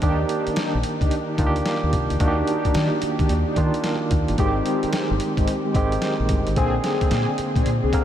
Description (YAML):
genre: R&B, new jack swing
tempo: 110 BPM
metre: 4/4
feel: swing 64% on 16ths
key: Eb major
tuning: A4 = 438 Hz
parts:
  - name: barky tine electric piano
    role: accompaniment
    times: 0.0-8.0 s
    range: D3 to Bb4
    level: -23 LUFS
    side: right 2 dB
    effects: fast tremolo
  - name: mellow synth brass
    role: stabs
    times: 0.0-8.0 s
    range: Ab3 to Ab4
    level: -27 LUFS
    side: left 1 dB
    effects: chorus, phaser, tape echo
  - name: deep dub fingered electric bass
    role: bass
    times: 0.0-7.9 s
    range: G1 to Eb3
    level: -24 LUFS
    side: equal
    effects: none
  - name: boom bap sampler-style drum kit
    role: drums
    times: 0.0-8.0 s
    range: hi-hat, kick drum, snare drum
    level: -25 LUFS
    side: equal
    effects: none
room: moderate huge ambient reverb, RT60 8.6 s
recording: dreamy mix soaked in reverb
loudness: -19 LUFS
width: side -10 dB against mid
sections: 0.0-8.0 A section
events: none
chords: 0.0 Ebmaj7; 4.4 Abmaj7; 6.6 Bb9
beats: | 0.02 0.57 1.11 1.66 | 2.20 2.75 3.29 3.84 | 4.38 4.93 5.47 6.02 | 6.57 7.11 7.66